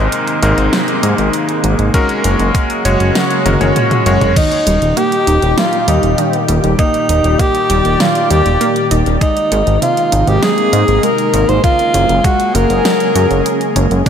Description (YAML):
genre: synthwave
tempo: 99 BPM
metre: 4/4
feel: straight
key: unclear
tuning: A4 = 439 Hz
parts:
  - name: lush unison pad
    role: sustained chords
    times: 0.0-14.1 s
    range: Bb2 to D5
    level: -19 LUFS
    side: equal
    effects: chorus, sidechain pumping
  - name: bright electric grand piano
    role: stabs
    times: 0.0-4.3 s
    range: Ab2 to Db5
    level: -16 LUFS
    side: left 1 dB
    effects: ping-pong delay, slapback echo
  - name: fat analog bass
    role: bass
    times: 0.0-14.0 s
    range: Eb1 to Ab2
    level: -14 LUFS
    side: equal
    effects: none
  - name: pop drum kit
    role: drums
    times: 0.1-14.1 s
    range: crash cymbal, hi-hat, snare drum, toms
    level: -20 LUFS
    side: right 1 dB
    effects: studio reverb
  - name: electronic kick drum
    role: drums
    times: 1.9-14.1 s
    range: none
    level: -14 LUFS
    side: equal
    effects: studio reverb
  - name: breathy alto saxophone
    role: melody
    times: 4.4-14.1 s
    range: Eb4 to C5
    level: -14 LUFS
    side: equal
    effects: ping-pong delay, slapback echo
  - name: wide unison pluck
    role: arpeggios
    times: 4.4-14.1 s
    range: C3 to Eb4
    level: -20 LUFS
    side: right 2 dB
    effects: ping-pong delay, slapback echo
room: moderate lush hall reverb, RT60 2.6 s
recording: big arena sound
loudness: -10 LUFS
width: side -8 dB against mid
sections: 0.0-14.1 A section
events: drum fill 3.5-4.4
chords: 0.0 Abadd9; 1.9 Gbadd9; 4.4 Eb; 9.2 Abadd9; 11.6 Gbadd9